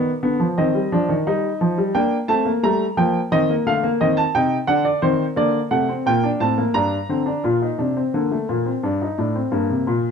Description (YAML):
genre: classical, baroque-style 3-part fugue for grand piano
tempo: 87 BPM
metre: 4/4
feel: straight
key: unclear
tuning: A4 = 440 Hz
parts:
  - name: warm baby grand piano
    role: solo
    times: 0.0-10.1 s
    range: G2 to Bb5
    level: -18 LUFS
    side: equal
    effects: none
room: moderate stone room reverb, RT60 1.1 s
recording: dark, warm production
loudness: -18 LUFS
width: side -6 dB against mid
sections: 0.0-7.4 A section; 7.4-10.1 B section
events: none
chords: 0.0 G (rootless); 0.6 Cm/Eb; 1.9 Gm; 3.3 Cm; 4.7 D; 6.1 Gm; 7.4 Bb; 8.8 Gm